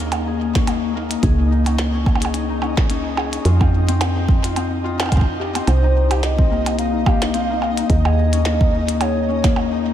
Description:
IDM; 108 BPM; 4/4; swing 56% on 16ths; A4 = 440 Hz
Celtic harp; arpeggios; 0.0-9.9 s; Bb3 to C5; -22 LUFS; left 6 dB; low-pass filter, tape echo
woody FM bass; bass; 0.0-9.9 s; C2 to F2; -20 LUFS; right 1 dB
glitchy drum kit; drums; 0.0-9.7 s; hi-hat, percussion blips, snare drum; -26 LUFS; right 3 dB; studio reverb, tape echo
flickering grainy texture; texture; 0.0-9.9 s; Eb4 to Eb5; -29 LUFS; right 2 dB; built-in reverb, wide subtle chorus
electronic kick drum; drums; 0.6-9.5 s; -17 LUFS; right 1 dB; studio reverb
warbly nostalgic lead; melody; 5.7-9.8 s; C5 to F5; -23 LUFS; right 2 dB; chorus, tremolo, tape echo
moderate huge ambient reverb, RT60 4.4 s; dreamy mix soaked in reverb; -16 LUFS; side -10 dB against mid
0.0-9.9 A section
0.0 Eb7sus4; 1.2 Dbsus2; 3.5 Fsus2; 5.7 Cm7; 7.9 Eb7sus4
0.12 0.67 | 1.23 1.78 2.34 2.90 | 3.45 4.01 4.56 5.12 | 5.67 6.23 6.79 7.34 | 7.90 8.45 9.01 9.56

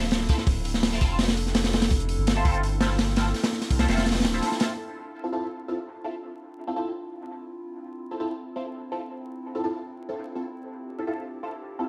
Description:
drum and bass, jungle; 167 BPM; 4/4; straight; D minor; A4 = 440 Hz
warbly tape-like pad; sustained chords; 0.0-11.9 s; C4 to A4; -39 LUFS; equal; chorus, built-in reverb, vintage 12-bit sampler grit
band-passed chord stab; stabs; 0.0-11.9 s; C4 to A4; -34 LUFS; equal; phaser, ensemble chorus, dub echo
soft dub sub bass; bass; 0.0-4.4 s; D1 to C2; -30 LUFS; equal
crunchy breakbeat drum kit; drums; 0.0-4.7 s; hi-hat, kick drum, snare drum; -26 LUFS; equal
light reverb, studio ambience; vinyl crackle; -27 LUFS; mono
0.0-4.8 A section; 4.8-11.9 B section
drop 0.0-4.8; kick drops out 4.1-4.8
0.0 Dm9
0.12 | 0.47 0.83 1.19 1.55 | 1.91 2.27 2.63 2.99 | 3.35 3.71 4.07 4.43 | 4.79 5.14 5.50 5.86 | 6.22 6.58 6.94 7.30 | 7.66 8.02 8.38 8.74 | 9.10 9.46 9.81 10.18 | 10.53 10.89 11.25 11.61

